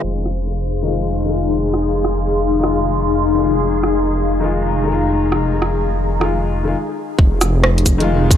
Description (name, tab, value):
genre	future garage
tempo	134 BPM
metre	4/4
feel	swing 64% on 16ths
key	F minor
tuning	A4 = 436 Hz
part	warm upright piano	accompaniment	0.0-8.4 s	Eb3 to F4	-22 LUFS	left 4 dB	vintage 12-bit sampler grit, sidechain pumping, analog delay
part	ethereal airy pad	sustained chords	0.0-8.4 s	Eb4 to C6	-20 LUFS	left 3 dB	ensemble chorus, built-in reverb, phaser, sidechain pumping
part	dark detuned saw bass	bass	0.0-8.4 s	F1	-19 LUFS	equal	sidechain pumping
part	backwards swelling texture	texture	0.0-6.8 s	Ab4	-28 LUFS	left 3 dB	built-in reverb
part	garage drum kit	drums	0.3-8.4 s	cabasa, hi-hat, rim click	-19 LUFS	right 2 dB	overdrive
part	electronic kick drum	drums	7.2-8.4 s	none	-11 LUFS	equal	overdrive
room	light reverb, digital ambience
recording	dry, gritty hardware recording, low-pass filter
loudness	-15 LUFS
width	side -10 dB against mid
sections	0.0-7.2 A section; 7.2-8.4 B section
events	filter sweep on ambient pad 0.0-7.2; filter sweep 0.0-7.2; break 6.7-7.2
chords	0.0 Fm7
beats	| 0.03 0.47 0.92 1.37 | 1.82 2.27 2.71 3.16 | 3.61 4.06 4.50 4.95 | 5.40 5.85 6.29 6.74 | 7.19 7.64 8.09